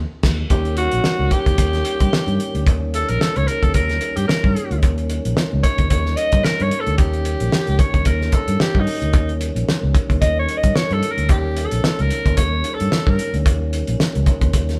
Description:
funk; 111 BPM; 4/4; swing 56% on 16ths; Eb mixolydian; A4 = 439 Hz
fingered electric bass; bass; 0.0-14.8 s; Bb1 to G2; -24 LUFS; equal
cloth-damped thuddy drum kit; drums; 0.2-14.8 s; crash cymbal, hi-hat, kick drum, snare drum; -21 LUFS; equal
raspy alto saxophone; melody; 0.5-13.3 s; Eb4 to Eb5; -25 LUFS; equal
mellow tonewheel organ; sustained chords; 0.5-14.8 s; Eb3 to Db4; -31 LUFS; equal; slow rotary speaker, overdrive, chorus vibrato
light reverb; band playing live in one room; -19 LUFS; mono
0.5-14.8 A section
band accent 0.0-0.5; alto saxophone solo 0.5-14.8
0.0 N.C.; 0.5 Eb7
| 0.51 1.05 1.59 2.13 | 2.67 3.21 3.75 4.29 | 4.83 5.37 5.91 6.45 | 6.99 7.53 8.06 8.60 | 9.14 9.68 10.22 10.76 | 11.30 11.84 12.38 12.92 | 13.46 13.99 14.53

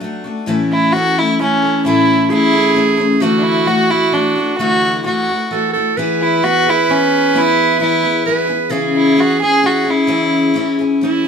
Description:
acoustic folk duo or small band; 131 BPM; 3/4; straight; A major; A4 = 440 Hz
picked steel-string acoustic guitar; accompaniment; 0.0-11.3 s; A2 to A4; -16 LUFS; left 3 dB
bright clarinet; second line; 0.5-11.3 s; E4 to B4; -17 LUFS; right 5 dB
warm fiddle; melody; 0.7-11.0 s; C#4 to G#4; -16 LUFS; right 1 dB
moderate studio reverb, RT60 0.6 s; minimal, uncompressed stereo recording; -12 LUFS; side -6 dB against mid
0.5-11.3 A section
0.5 A; 3.2 Dadd9; 6.0 E; 8.7 C#m
0.01 | 0.47 0.93 1.39 | 1.85 2.31 2.77 | 3.23 3.69 4.14 | 4.60 5.06 5.52 | 5.98 6.44 6.89 | 7.35 7.81 8.27 | 8.73 9.19 9.65 | 10.11 10.56 11.02

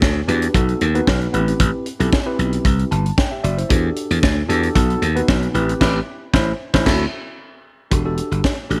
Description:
early-eighties boogie funk; 114 BPM; 4/4; straight; E minor; A4 = 440 Hz
tine electric piano; accompaniment; 0.0-8.8 s; B3 to A5; -25 LUFS; equal
slap bass; bass; 0.0-8.8 s; E1 to E2; -21 LUFS; equal
tight funk drum kit; drums; 0.0-8.8 s; crash cymbal, hi-hat, kick drum, snare drum; -22 LUFS; equal
light reverb, studio ambience; -18 LUFS; mono
0.0-7.9 A section
tine electric piano fill 2.7-3.7; band accent 5.8-7.9
0.0 Em9; 0.5 B7; 1.3 Am9; 3.7 Em11; 4.8 B7; 5.5 Am9; 6.9 D9; 7.9 Em11
0.02 0.55 1.07 | 1.60 2.12 2.65 3.18 | 3.70 4.23 4.76 5.28 | 5.81 6.33 6.86 7.39 | 7.91 8.44

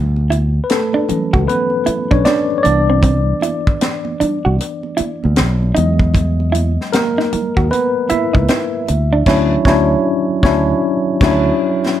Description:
R&B, neo-soul; 77 BPM; 4/4; swing 63% on 16ths; A4 = 442 Hz
fingered electric bass; bass; 0.0-11.5 s; B1 to E2; -16 LUFS; equal
congas; percussion; 0.2-9.1 s; -28 LUFS; right 6 dB
hollow-body jazz guitar; second line; 0.3-9.2 s; C4 to F#4; -19 LUFS; right 4 dB
tight funk drum kit; drums; 0.3-12.0 s; crash cymbal, hi-hat, kick drum, snare drum; -17 LUFS; equal
tine electric piano; accompaniment; 0.6-12.0 s; E3 to E5; -16 LUFS; left 1 dB; medium stereo tremolo
light reverb; -13 LUFS; side -11 dB against mid
0.0-12.0 A section
tine electric piano solo 0.0-12.0; band accent 9.3-12.0; drum fill 11.6-12.0
0.0 Dmaj9; 2.6 Cmaj9; 5.8 Emaj9; 8.9 Dmaj9
0.69 1.47 2.25 | 3.03 3.81 4.59 5.37 | 6.15 6.93 7.71 8.48 | 9.26 10.04 10.82 11.60

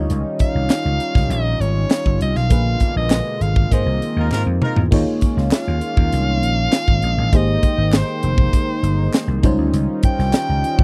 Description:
polished 1980s jazz-funk pop; 100 BPM; 4/4; straight; Ab major; A4 = 440 Hz
FM electric piano; accompaniment; 0.0-10.8 s; D3 to Eb5; -27 LUFS; equal; lush chorus
warm analog pad; sustained chords; 0.0-10.8 s; Cb3 to G5; -29 LUFS; equal; chorus
vintage slap bass; bass; 0.0-10.8 s; F1 to Ab2; -21 LUFS; equal
crisp fusion drum kit; drums; 0.1-10.8 s; crash cymbal, hi-hat, kick drum, snare drum, toms; -19 LUFS; equal
edgy soprano saxophone; melody; 0.4-10.8 s; C5 to G5; -26 LUFS; equal; slapback echo
group handclap; percussion; 0.7-10.5 s; -37 LUFS; equal
warm horn section; second line; 4.2-4.8 s; Eb4 to Bb4; -27 LUFS; equal
little or no reverb; dry, close 1970s-style studio recording; -18 LUFS; mono
0.0-4.9 A section; 4.9-10.8 A section
band accent 2.5-4.9; drum fill 4.3-4.9
0.0 Dbadd9(#11); 2.5 Bb7b9; 3.7 Ab69; 4.9 Eb9sus4; 7.3 Abmaj9; 9.4 Dbmaj9#11
| 0.10 0.70 1.31 1.91 | 2.51 3.11 3.72 4.32 | 4.92 5.52 6.12 6.73 | 7.33 7.93 8.53 9.13 | 9.74 10.34

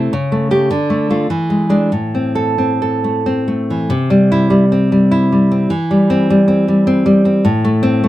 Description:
romantic piece for solo classical guitar; 90-105 BPM; 3/4; rubato; A minor, C major from 3.9 s; A4 = 440 Hz
nylon-string guitar; solo; 0.0-8.1 s; A2 to A4; -12 LUFS; equal
light reverb; close, detailed microphones; -12 LUFS; side -15 dB against mid
0.0-3.9 A section; 3.9-8.1 B section
0.1 A7/C#; 0.7 Dm; 1.3 E7; 1.9 Am; 3.9 C; 5.7 C/E; 7.4 Am
| 0.12 0.70 1.30 | 1.93 2.59 3.26 | 3.91 4.52 5.12 | 5.71 6.29 6.86 | 7.45 8.02

